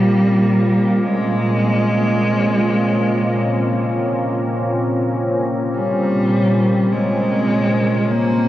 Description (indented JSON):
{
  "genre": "dark ambient drone",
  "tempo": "free time",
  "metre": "none",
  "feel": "none",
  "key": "unclear",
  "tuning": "A4 = 440 Hz",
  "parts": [
    { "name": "dark cello", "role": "melody", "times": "0.0-8.5 s", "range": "G3 to Bb3", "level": "-18 LUFS", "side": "equal", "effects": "diffuse ambient delay" },
    { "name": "dark analog pad", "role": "sustained chords", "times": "0.0-8.5 s", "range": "C4 to G4", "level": "-22 LUFS", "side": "left 1 dB", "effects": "chorus" },
    { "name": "organ-like drone", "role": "drone", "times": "0.0-8.5 s", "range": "Bb2", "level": "-20 LUFS", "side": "right 1 dB", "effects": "ensemble chorus, built-in reverb" }
  ],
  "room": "wet cathedral reverb, RT60 6.7 s",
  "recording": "worn, warbling old tape, cassette tape, warbly pitch drift",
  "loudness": "-15 LUFS",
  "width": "side -14 dB against mid",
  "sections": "0.0-8.5 A section",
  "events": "filter sweep on synth drone 0.0-8.5",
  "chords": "0.0 Bbm"
}